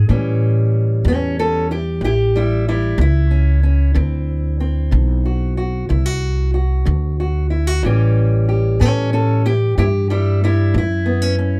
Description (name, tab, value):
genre	acoustic country blues, solo or duo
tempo	62 BPM (dotted quarters)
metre	12/8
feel	straight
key	A mixolydian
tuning	A4 = 442 Hz
part	fingerpicked steel-string acoustic guitar	melody	0.0-11.6 s	A2 to A4	-23 LUFS	equal	none
part	upright bass	bass	0.0-11.6 s	A1 to A2	-18 LUFS	equal	none
room	light reverb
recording	none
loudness	-17 LUFS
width	mono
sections	0.1-11.6 A section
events	none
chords	0.1 A7; 4.0 D7; 7.8 A7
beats	| 0.09 1.05 2.02 2.99 | 3.96 4.92 5.89 6.86 | 7.83 8.80 9.77 10.74